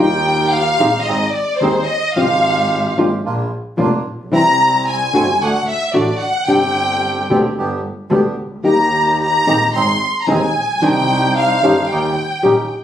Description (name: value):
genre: tango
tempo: 111 BPM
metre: 4/4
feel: rubato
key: C minor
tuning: A4 = 441 Hz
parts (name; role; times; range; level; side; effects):
- warm studio violin section; second line; 0.0-12.7 s; C5 to C6; -16 LUFS; left 1 dB; none
- nylon-string guitar; accompaniment; 0.0-12.5 s; B2 to Ab4; -16 LUFS; left 2 dB; none
- bandoneon; stabs; 0.0-12.7 s; G3 to C5; -21 LUFS; right 3 dB; none
- rich double bass; bass; 0.0-12.7 s; F1 to Eb2; -21 LUFS; right 1 dB; none
room: moderate studio reverb, RT60 0.5 s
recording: recorded on a phone in the room, studio reverb, compression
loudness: -13 LUFS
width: side -10 dB against mid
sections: 0.0-12.8 A section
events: violin section solo 0.0-12.8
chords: 0.0 Ebadd9; 1.1 Ab; 2.2 Fmadd9/Ab; 3.2 Bb; 4.3 C; 5.4 D; 6.5 Gsus4; 7.6 G; 8.7 Eb; 9.7 Ab; 10.8 Cmadd9; 11.9 Eb7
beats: 0.52 1.07 1.61 | 2.16 2.70 3.24 3.79 | 4.33 4.87 5.41 5.95 | 6.49 7.03 7.57 8.12 | 8.66 9.20 9.74 10.28 | 10.82 11.36 11.90 12.44